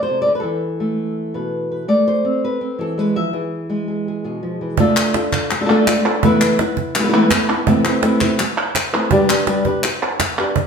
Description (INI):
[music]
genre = flamenco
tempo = 166 BPM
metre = 4/4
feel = straight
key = E phrygian dominant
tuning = A4 = 440 Hz
[part]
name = flamenco guitar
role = melody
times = 0.0-10.7 s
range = A2 to E5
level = -17 LUFS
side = equal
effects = none
[part]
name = cajon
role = percussion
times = 4.8-10.7 s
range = none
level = -22 LUFS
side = right 6 dB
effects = none
[part]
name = palmas hand claps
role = percussion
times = 5.0-10.6 s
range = none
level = -20 LUFS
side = equal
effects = none
[sound]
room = wet studio reverb, RT60 0.9 s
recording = heard from further back in the room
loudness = -15 LUFS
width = side -6 dB against mid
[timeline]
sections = 0.0-4.8 A section; 4.8-10.6 B section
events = none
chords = 0.4 Esus4; 1.9 Amadd9; 3.3 E; 4.8 Dm; 6.2 Esus4; 7.7 Amadd9; 9.1 G